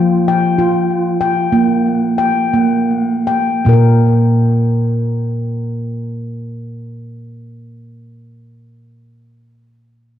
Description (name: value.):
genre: world meditative, meditative tuned percussion.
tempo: 51-67 BPM (dotted quarters).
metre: 6/8.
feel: straight.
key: unclear.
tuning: A4 = 440 Hz.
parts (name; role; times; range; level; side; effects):
handpan; solo; 0.0-8.6 s; Bb2 to G5; -13 LUFS; equal; tape echo.
room: wet scoring stage reverb, RT60 1.5 s, small room ambience.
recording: dark, warm production.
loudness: -12 LUFS.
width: side -10 dB against mid.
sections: 0.0-3.7 A section; 3.7-8.4 B section.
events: slowing down 0.0-3.7.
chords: 0.0 Fsus2; 1.5 Gm/Bb; 3.7 N.C..